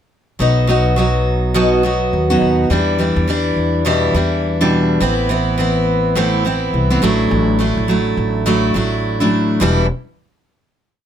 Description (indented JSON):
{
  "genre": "acoustic pop",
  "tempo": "104 BPM",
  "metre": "4/4",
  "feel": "swing 60% on 16ths",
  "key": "E minor",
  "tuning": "A4 = 440 Hz",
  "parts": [
    { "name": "picked steel-string acoustic guitar", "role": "accompaniment", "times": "0.4-9.9 s", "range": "E2 to F#4", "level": "-14 LUFS", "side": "equal", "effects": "none" },
    { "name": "upright bass", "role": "bass", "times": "0.4-9.9 s", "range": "E1 to E2", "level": "-19 LUFS", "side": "equal", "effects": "none" }
  ],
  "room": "little or no reverb",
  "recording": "close, detailed microphones",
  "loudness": "-13 LUFS",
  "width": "side -9 dB against mid",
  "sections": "0.4-9.6 chorus; 9.6-11.1 final chord",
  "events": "none",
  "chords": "0.4 B; 2.7 Em7; 5.0 Amadd9; 7.0 Dadd9/A; 9.6 Em7"
}